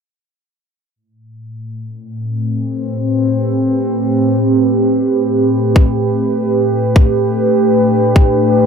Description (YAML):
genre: ambient dub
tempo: free time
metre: none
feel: none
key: A minor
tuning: A4 = 443 Hz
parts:
  - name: warbly tape-like pad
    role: sustained chords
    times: 1.6-8.7 s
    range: A2 to B4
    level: -13 LUFS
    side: equal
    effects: chorus, built-in reverb
  - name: electronic kick drum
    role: drums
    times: 5.8-8.3 s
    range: none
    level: -9 LUFS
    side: left 1 dB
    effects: none
room: wet echo chamber reverb, RT60 2.2 s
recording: none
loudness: -12 LUFS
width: side -6 dB against mid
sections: 1.0-8.7 A section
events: none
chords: 1.0 Am7